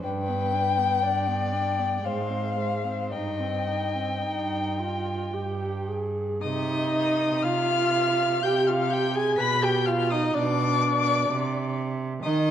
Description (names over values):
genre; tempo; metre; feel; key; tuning
classical, slow romantic movement for string quartet; 54-65 BPM; 3/4; rubato; C minor; A4 = 440 Hz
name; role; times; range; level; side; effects
dark violin; melody; 0.0-12.5 s; Eb5 to B6; -28 LUFS; left 7 dB; none
dark violin; second line; 0.0-12.5 s; B4 to B5; -30 LUFS; left 1 dB; none
dark viola; accompaniment; 0.0-12.5 s; Ab3 to B4; -28 LUFS; right 2 dB; none
clear cello; bass; 0.0-12.5 s; G2 to Eb3; -30 LUFS; right 3 dB; none
room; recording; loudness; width
wet recital hall reverb, RT60 1.4 s; worn, warbling old tape, cassette tape, warbly pitch drift; -23 LUFS; side -10 dB against mid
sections
0.0-6.4 A section; 6.4-12.5 B section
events
none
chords
0.0 G; 2.0 Fm/Ab; 3.1 Cm/G; 5.3 N.C.; 6.4 Cm; 9.4 G7b13/B; 11.3 Csus2